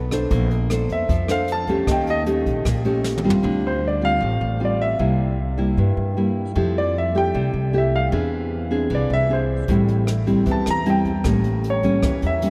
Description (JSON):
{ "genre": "bossa nova", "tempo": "154 BPM", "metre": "4/4", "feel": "straight", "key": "D minor", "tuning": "A4 = 441 Hz", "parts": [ { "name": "nylon-string guitar", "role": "accompaniment", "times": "0.0-12.5 s", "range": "G2 to C5", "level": "-24 LUFS", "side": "equal", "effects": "none" }, { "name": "upright bass", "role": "bass", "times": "0.0-12.5 s", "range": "A1 to G2", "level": "-26 LUFS", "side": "equal", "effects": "none" }, { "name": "jazz brush drum kit", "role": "drums", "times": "0.1-3.4, 9.7-12.5 s", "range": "hi-hat, kick drum, rim click, snare drum, toms", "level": "-30 LUFS", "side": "equal", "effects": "none" }, { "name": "warm concert grand piano", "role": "melody", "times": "0.9-12.5 s", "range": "C5 to Bb5", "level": "-28 LUFS", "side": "equal", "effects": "none" } ], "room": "wet cathedral reverb, RT60 6.4 s", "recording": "in a vast, echoing space", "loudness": "-21 LUFS", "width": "mono", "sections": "0.0-3.4 A section; 3.4-12.5 A section", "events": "grand piano solo 0.0-3.4, 3.4-12.5; drum fill 3.0-3.4", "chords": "0.3 Bbmaj9; 1.9 Eb7#11; 3.4 Dm7; 5.0 C7; 6.6 Fmaj9; 8.1 Eaug7; 9.7 Am7; 11.3 A7b9" }